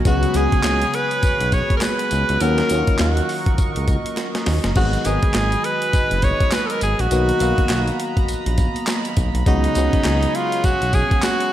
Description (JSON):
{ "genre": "R&B, new jack swing", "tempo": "102 BPM", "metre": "4/4", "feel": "swing 60% on 16ths", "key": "unclear", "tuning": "A4 = 439 Hz", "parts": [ { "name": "FM electric piano", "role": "accompaniment", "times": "0.0-11.5 s", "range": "C#3 to E#5", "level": "-24 LUFS", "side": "left 2 dB", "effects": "chorus, phaser" }, { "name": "chorused pulse-width pad", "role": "sustained chords", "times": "0.0-11.5 s", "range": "F#4 to C#6", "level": "-29 LUFS", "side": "right 3 dB", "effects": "none" }, { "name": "smooth synth bass", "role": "bass", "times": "0.0-11.0 s", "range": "F#1 to D#2", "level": "-21 LUFS", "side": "equal", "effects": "none" }, { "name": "bright tenor saxophone", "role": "melody", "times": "0.1-11.5 s", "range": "D#4 to C#5", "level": "-22 LUFS", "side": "right 1 dB", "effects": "none" }, { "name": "breakbeat sampler-style drum kit", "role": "drums", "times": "0.1-11.5 s", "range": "crash cymbal, handclaps, hi-hat, kick drum, snare drum, tambourine", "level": "-21 LUFS", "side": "equal", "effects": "none" }, { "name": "group handclap", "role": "percussion", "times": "0.3-11.4 s", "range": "none", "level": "barely audible", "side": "none", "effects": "none" } ], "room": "light reverb, digital ambience", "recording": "none", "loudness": "-16 LUFS", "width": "side -12 dB against mid", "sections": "0.0-11.5 A section", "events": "drum fill 4.2-4.8", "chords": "0.1 C#7sus4; 2.4 D#m7; 4.8 G#m7; 7.1 Bmaj7; 9.5 C#7sus4" }